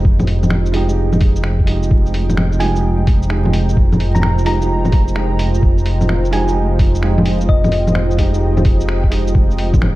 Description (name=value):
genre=future garage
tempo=129 BPM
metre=4/4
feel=swing 66% on 16ths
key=unclear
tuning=A4 = 440 Hz
part: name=felt-muted upright piano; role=accompaniment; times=0.0-10.0 s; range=F3 to G4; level=-23 LUFS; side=right 3 dB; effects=sidechain pumping, tape echo
part: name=dark analog pad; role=sustained chords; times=0.0-10.0 s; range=F4 to Bb5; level=-24 LUFS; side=right 1 dB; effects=chorus, sidechain pumping
part: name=dark detuned saw bass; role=bass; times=0.0-10.0 s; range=F1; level=-16 LUFS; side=equal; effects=tube saturation, sidechain pumping
part: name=electronic kick drum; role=drums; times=0.1-9.8 s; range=none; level=-13 LUFS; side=equal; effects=studio reverb
part: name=lo-fi sampler-style drum kit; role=drums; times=0.2-9.9 s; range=bongos, finger snaps, hi-hat, shaker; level=-20 LUFS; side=left 1 dB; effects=studio reverb
part: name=thumb-piano-like synth pluck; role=melody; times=2.6-8.2 s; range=Eb5 to Bb5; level=-25 LUFS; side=left 1 dB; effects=chorus, cassette tape, analog delay
room=digital ambience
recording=dark, warm production, vinyl crackle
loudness=-12 LUFS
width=side -17 dB against mid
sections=0.0-9.3 A section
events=band accent 8.9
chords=0.0 Fm9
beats=| 0.05 0.51 0.98 1.44 | 1.91 2.37 2.84 3.30 | 3.77 4.23 4.70 5.16 | 5.63 6.09 6.56 7.02 | 7.49 7.95 8.42 8.88 | 9.35 9.81